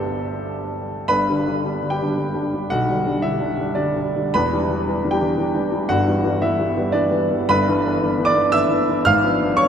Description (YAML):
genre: classical, romantic character piece for solo piano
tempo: 96-119 BPM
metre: 3/4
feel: rubato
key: G major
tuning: A4 = 441 Hz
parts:
  - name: warm baby grand piano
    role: solo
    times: 0.0-9.7 s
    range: E1 to E#6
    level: -18 LUFS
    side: equal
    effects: none
room: wet cathedral reverb, RT60 6.5 s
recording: in a vast, echoing space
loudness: -18 LUFS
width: side -8 dB against mid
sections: 0.0-1.1 A section; 1.1-9.7 B section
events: none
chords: 0.0 G; 2.7 G/B; 4.3 Em7; 5.9 Em/G; 7.5 Em7/G; 9.0 G#dim7